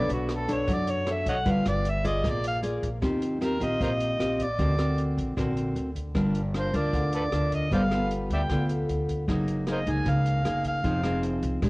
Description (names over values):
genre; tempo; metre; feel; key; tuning
bossa nova; 154 BPM; 4/4; straight; Eb major from 3.0 s; A4 = 440 Hz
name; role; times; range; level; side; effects
overdriven harmonica; melody; 0.0-11.2 s; F#4 to Ab5; -30 LUFS; equal; cassette tape
nylon-string guitar; accompaniment; 0.0-11.7 s; Bb2 to E5; -28 LUFS; equal; cassette tape
upright bass; bass; 0.0-11.7 s; F1 to F#2; -29 LUFS; equal; none
open jazz drum kit; drums; 0.1-11.7 s; hi-hat, kick drum, rim click; -35 LUFS; equal; cassette tape
room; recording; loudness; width
light reverb; home recording on cassette; -24 LUFS; side -24 dB against mid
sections
0.0-3.0 A section; 3.0-11.7 B section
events
harmonica solo 0.0-3.0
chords
0.0 Bm9; 1.5 G6; 2.2 A#7; 3.0 Eb69; 4.6 Daug7; 6.2 Gm7; 7.7 G9; 9.3 Gb69; 10.8 Fm7